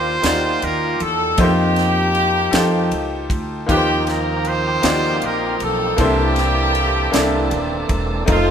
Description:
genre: slow gospel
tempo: 52 BPM (dotted quarters)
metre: 6/8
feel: straight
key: unclear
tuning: A4 = 440 Hz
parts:
  - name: clear horn section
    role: melody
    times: 0.0-8.5 s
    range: A3 to C5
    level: -19 LUFS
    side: equal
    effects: none
  - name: bright grand piano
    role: accompaniment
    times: 0.0-8.5 s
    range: C3 to D5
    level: -21 LUFS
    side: left 1 dB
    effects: none
  - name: upright bass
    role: bass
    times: 0.0-8.5 s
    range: Eb1 to F2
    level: -22 LUFS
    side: right 1 dB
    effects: none
  - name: tight funk drum kit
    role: drums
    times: 0.2-8.5 s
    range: kick drum, ride cymbal, snare drum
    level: -23 LUFS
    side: equal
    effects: none
  - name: tonewheel organ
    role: sustained chords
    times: 3.7-8.5 s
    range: E3 to A4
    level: -25 LUFS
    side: right 2 dB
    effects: fast rotary speaker, overdrive
room: moderate stone room reverb, RT60 1.4 s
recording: band playing live in one room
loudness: -15 LUFS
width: side -8 dB against mid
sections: 0.0-8.5 A section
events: none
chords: 0.0 Ebmaj9; 1.4 F7sus4; 2.5 F9; 3.7 Eb69; 6.0 C13

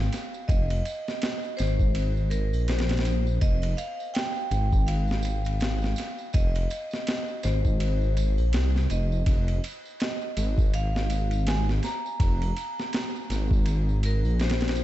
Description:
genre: trip hop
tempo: 82 BPM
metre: 4/4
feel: swing 58% on 16ths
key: F minor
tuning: A4 = 440 Hz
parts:
  - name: vibraphone with hard mallets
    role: melody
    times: 0.0-14.8 s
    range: Bb4 to Bb5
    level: -34 LUFS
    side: equal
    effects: vintage 12-bit sampler grit, dub echo
  - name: dark detuned saw bass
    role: bass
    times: 0.0-14.8 s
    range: F1 to C2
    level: -25 LUFS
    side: equal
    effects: none
  - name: impact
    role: sound effects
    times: 0.4-0.5 s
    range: none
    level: barely audible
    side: none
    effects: none
  - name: boom bap sampler-style drum kit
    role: drums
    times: 0.1-14.8 s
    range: kick drum, ride cymbal, snare drum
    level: -28 LUFS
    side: equal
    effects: none
  - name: tambourine and triangle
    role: percussion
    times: 0.1-14.8 s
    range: none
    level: -46 LUFS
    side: right 7 dB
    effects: none
room: digital ambience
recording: nothing above 8.0 kHz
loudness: -24 LUFS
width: side -14 dB against mid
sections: 0.0-14.8 A section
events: impact 0.0-0.5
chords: 0.0 Fm7

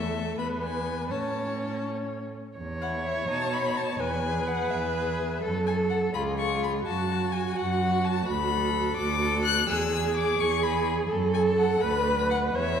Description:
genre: quick classical-period movement for string quartet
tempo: 84 BPM (dotted quarters)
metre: 6/8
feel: straight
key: unclear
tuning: A4 = 440 Hz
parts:
  - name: rich violin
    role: melody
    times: 0.0-12.8 s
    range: E5 to F#6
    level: -30 LUFS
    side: left 7 dB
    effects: none
  - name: rich violin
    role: second line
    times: 0.0-12.5 s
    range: D#4 to C#5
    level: -34 LUFS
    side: left 2 dB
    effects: none
  - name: warm viola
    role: accompaniment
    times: 0.0-12.8 s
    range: A3 to C#5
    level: -29 LUFS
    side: right 2 dB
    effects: none
  - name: rich cello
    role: bass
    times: 0.0-12.8 s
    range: C#2 to B2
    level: -30 LUFS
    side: right 3 dB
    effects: none
room: wet concert hall reverb, RT60 2.0 s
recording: none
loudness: -24 LUFS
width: side -7 dB against mid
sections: 0.0-2.6 A section; 2.6-12.8 B section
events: none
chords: 0.4 E; 1.1 A; 2.6 C#m/E; 3.3 B; 4.0 E; 5.4 F#m; 6.1 C#; 6.9 F#m; 8.3 Bm7/D; 9.7 E; 11.1 F#m; 11.8 Bm/D

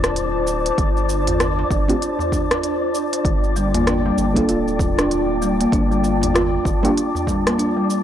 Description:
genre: organic downtempo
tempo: 97 BPM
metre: 4/4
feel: swing 60% on 16ths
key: G minor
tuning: A4 = 440 Hz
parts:
  - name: deep mellow chord stab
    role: accompaniment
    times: 0.0-6.9 s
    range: G3 to A4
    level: -24 LUFS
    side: right 2 dB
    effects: chorus, sidechain pumping, analog delay
  - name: warbly tape-like pad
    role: sustained chords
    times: 0.0-8.0 s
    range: Bb3 to D6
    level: -24 LUFS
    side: left 2 dB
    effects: chorus, built-in reverb, sidechain pumping
  - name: round analog bass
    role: bass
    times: 0.0-6.9 s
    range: D1 to G1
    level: -24 LUFS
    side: equal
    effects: transformer saturation
  - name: deep house drum kit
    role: drums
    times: 0.0-8.0 s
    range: hi-hat, rim click, shaker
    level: -24 LUFS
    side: equal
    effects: none
  - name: darbuka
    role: percussion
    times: 0.0-7.4 s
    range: none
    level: -31 LUFS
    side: right 1 dB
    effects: none
  - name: wind-like tuned noise texture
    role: texture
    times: 0.0-8.0 s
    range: D4 to D5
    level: -26 LUFS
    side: left 1 dB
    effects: built-in reverb
  - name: electronic kick drum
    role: drums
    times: 0.8-7.4 s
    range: none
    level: -23 LUFS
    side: equal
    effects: none
  - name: folk marimba with soft mallets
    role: arpeggios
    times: 3.6-8.0 s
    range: G3 to F4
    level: -21 LUFS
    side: equal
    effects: vintage 12-bit sampler grit, analog delay
room: light reverb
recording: dry, gritty hardware recording, cassette tape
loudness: -17 LUFS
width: side -10 dB against mid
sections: 0.0-8.0 A section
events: filter sweep on synth stab 0.0-8.0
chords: 0.0 Dm7; 3.3 Gm7

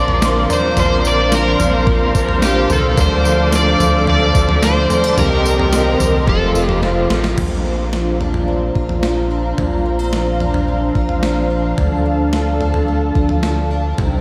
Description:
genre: dream pop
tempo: 109 BPM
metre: 4/4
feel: straight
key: Bb major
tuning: A4 = 436 Hz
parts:
  - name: overdriven slide guitar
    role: melody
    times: 0.0-6.8 s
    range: G4 to D5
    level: -21 LUFS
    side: equal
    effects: diffuse ambient delay
  - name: overdriven semi-hollow guitar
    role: accompaniment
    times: 0.0-7.4 s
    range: F2 to G4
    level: -27 LUFS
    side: equal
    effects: tremolo, lush chorus
  - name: warm analog pad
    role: sustained chords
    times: 0.0-14.2 s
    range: D4 to D6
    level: -23 LUFS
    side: equal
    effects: chorus
  - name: picked plugged-in twelve-string acoustic guitar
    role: arpeggios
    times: 0.0-14.2 s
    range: F2 to G4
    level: -23 LUFS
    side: equal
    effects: analog chorus, diffuse ambient delay
  - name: round analog bass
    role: bass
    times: 0.0-14.2 s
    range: F1 to D2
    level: -22 LUFS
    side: equal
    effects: none
  - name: gated 80s digital drum machine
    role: drums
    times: 0.1-14.1 s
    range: crash cymbal, kick drum, snare drum, tambourine, toms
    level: -23 LUFS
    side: equal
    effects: gated reverb, gated reverb snare, overdrive
room: wet huge ambient reverb, RT60 8.4 s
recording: dreamy mix soaked in reverb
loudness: -16 LUFS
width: mono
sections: 0.0-7.4 A section; 7.4-14.2 B section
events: drum fill 6.8-7.4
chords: 0.0 Bbadd9; 3.0 Dm; 5.2 Cm7; 6.3 F; 7.4 Bbadd9; 11.8 Dm

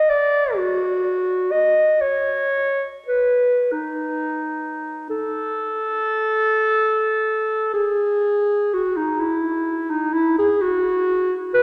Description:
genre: classical, free, expressive piece for unaccompanied clarinet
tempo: 24-44 BPM (dotted quarters)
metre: 6/8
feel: rubato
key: unclear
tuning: A4 = 436 Hz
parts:
  - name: mellow clarinet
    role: solo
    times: 0.0-11.6 s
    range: D#4 to D#5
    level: -20 LUFS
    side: equal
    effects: none
room: wet church reverb, RT60 2.9 s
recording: none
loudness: -21 LUFS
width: mono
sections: 0.0-7.7 A section; 7.7-11.6 B section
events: none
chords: none

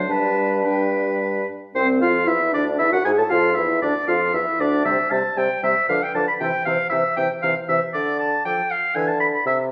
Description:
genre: quick classical-period movement for wind quintet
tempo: 116 BPM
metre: 3/4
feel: rubato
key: unclear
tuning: A4 = 440 Hz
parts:
  - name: clear oboe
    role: second line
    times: 0.0-9.6 s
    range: B4 to B5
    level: -24 LUFS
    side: equal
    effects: none
  - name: mellow clarinet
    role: accompaniment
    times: 0.0-9.1 s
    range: C4 to C5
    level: -28 LUFS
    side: equal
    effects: none
  - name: warm French horn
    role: accompaniment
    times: 0.0-9.1 s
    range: E3 to A4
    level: -30 LUFS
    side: equal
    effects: none
  - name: mellow bassoon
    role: bass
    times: 0.0-9.7 s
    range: C2 to D3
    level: -26 LUFS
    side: equal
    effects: none
  - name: silver concert flute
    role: melody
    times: 0.1-9.0 s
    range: C5 to E6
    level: -33 LUFS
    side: equal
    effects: none
room: wet recital hall reverb, RT60 1.2 s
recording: heard from further back in the room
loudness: -20 LUFS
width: mono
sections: 0.0-1.7 A section; 1.7-9.7 B section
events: none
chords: 0.1 G; 1.7 Dm9/C; 2.8 F#m9/E; 3.3 Dmadd9; 4.9 C; 5.9 Bdim/D; 6.4 C; 7.9 Dm; 9.0 E5/D

